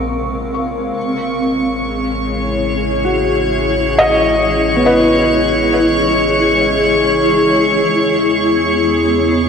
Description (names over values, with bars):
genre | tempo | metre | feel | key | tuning
ambient | 69 BPM | 4/4 | straight | unclear | A4 = 440 Hz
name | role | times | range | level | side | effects
granular cloud pad | sustained chords | 0.0-9.5 s | B3 to F5 | -15 LUFS | left 1 dB | built-in reverb
felt-muted upright piano | arpeggios | 0.0-8.1 s | Cb4 to Db6 | -17 LUFS | left 1 dB | ping-pong delay
warm sub bass | bass | 0.0-9.5 s | A1 to E2 | -26 LUFS | equal | none
bowed-like drone | drone | 0.0-9.5 s | Db3 to Ab3 | -26 LUFS | left 3 dB | built-in reverb
rich studio violin section | texture | 1.0-9.5 s | C#6 | -19 LUFS | equal | none
room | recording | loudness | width
wet lush hall reverb, RT60 2.7 s | dreamy mix soaked in reverb, cassette tape | -12 LUFS | side -6 dB against mid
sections
0.0-9.5 A section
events
fade-in on synth drone 0.0-9.5; fade-out on sub bass 0.0-9.5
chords
0.0 Bbm7; 1.0 Amaj7; 7.9 Emaj7